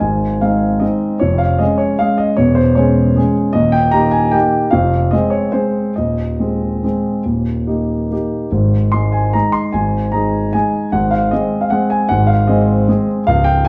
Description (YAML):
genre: classical, piano waltz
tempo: 136-163 BPM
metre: 3/4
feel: rubato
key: Ab major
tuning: A4 = 440 Hz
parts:
  - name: warm concert grand piano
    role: solo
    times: 0.0-13.7 s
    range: Db1 to C6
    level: -15 LUFS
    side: equal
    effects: none
room: moderate recital hall reverb, RT60 1.4 s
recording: dark, warm production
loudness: -15 LUFS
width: mono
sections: 0.0-13.7 A section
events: none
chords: 0.0 Ab; 1.2 Db/F; 2.4 Dbm/Fb; 3.6 Eb; 4.7 Fm; 6.0 Ab/Eb; 7.3 Eb; 8.5 Ab5; 10.9 Ab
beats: | 0.03 0.42 0.83 | 1.22 1.61 2.01 | 2.39 2.78 3.18 | 3.56 3.94 4.34 | 4.74 5.13 5.55 | 5.97 6.40 6.84 | 7.26 7.69 8.12 | 8.54 8.94 9.34 | 9.74 10.13 10.54 | 10.93 11.31 11.71 | 12.10 12.49 12.88 | 13.27 13.65